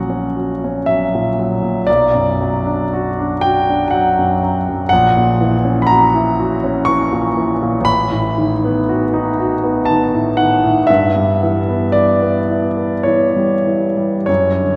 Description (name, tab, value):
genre	classical, romantic nocturne for solo piano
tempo	46-62 BPM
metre	3/4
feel	rubato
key	B minor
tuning	A4 = 440 Hz
part	warm concert grand piano	solo	0.0-14.8 s	A1 to C#6	-16 LUFS	equal	none
room	wet church reverb, RT60 3.3 s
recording	none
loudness	-16 LUFS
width	mono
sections	0.0-14.8 A section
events	none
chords	0.0 F#/A#; 1.9 Bm; 4.9 F#7/A#; 7.9 B7/A; 10.9 Em/G